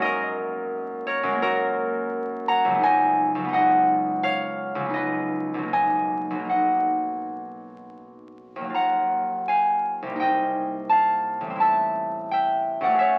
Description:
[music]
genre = classical, solo harp piece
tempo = 74-89 BPM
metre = 4/4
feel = rubato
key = F# major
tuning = A4 = 441 Hz
[part]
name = concert harp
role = solo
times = 0.0-13.2 s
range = A1 to A#5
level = -24 LUFS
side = equal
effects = none
[sound]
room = light reverb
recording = very old 78 rpm record, vinyl crackle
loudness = -24 LUFS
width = mono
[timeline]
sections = 0.0-13.2 A section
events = none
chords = 0.0 F#69; 2.8 C#11; 5.7 Bmaj7; 8.7 D#madd9; 10.2 Cm7; 11.6 Am7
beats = | 0.02 0.73 1.41 2.13 | 2.83 3.52 4.23 4.94 | 5.73 6.49 7.23 7.97 | 8.72 9.47 10.19 10.89 | 11.60 12.30 12.99

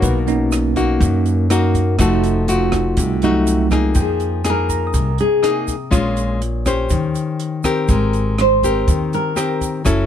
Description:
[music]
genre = bossa nova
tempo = 122 BPM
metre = 4/4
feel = straight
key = F minor from 4.0 s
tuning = A4 = 440 Hz
[part]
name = bell-like tine electric piano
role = accompaniment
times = 0.0-9.9 s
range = Gb3 to Eb6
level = -22 LUFS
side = right 4 dB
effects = auto-pan
[part]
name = nylon-string guitar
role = accompaniment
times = 0.0-10.1 s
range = F#2 to C5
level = -19 LUFS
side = left 4 dB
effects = none
[part]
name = upright bass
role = bass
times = 0.0-10.1 s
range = F1 to F#2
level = -20 LUFS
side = right 1 dB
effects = none
[part]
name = compact cocktail drum kit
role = drums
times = 0.0-10.0 s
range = hi-hat, kick drum, rim click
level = -21 LUFS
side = equal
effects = none
[part]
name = tube shaker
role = percussion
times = 0.0-10.1 s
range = none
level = -33 LUFS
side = right 7 dB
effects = none
[part]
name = nylon-string guitar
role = melody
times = 4.0-9.6 s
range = Ab4 to C5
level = -19 LUFS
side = equal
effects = none
[sound]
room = little or no reverb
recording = close, detailed microphones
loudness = -15 LUFS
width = side -9 dB against mid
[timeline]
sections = 0.0-4.0 A section; 4.0-10.1 A section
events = tine electric piano solo 0.0-4.0; nylon-string guitar solo 4.0-10.1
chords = 0.0 Bmaj7; 2.0 F7b9; 4.0 Fm11; 5.9 Bbm7; 6.9 Eb6; 7.9 Abmaj9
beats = | 0.03 0.52 1.01 1.50 | 1.99 2.48 2.98 3.47 | 3.96 4.45 4.94 5.43 | 5.92 6.42 6.91 7.40 | 7.89 8.38 8.87 9.37 | 9.86

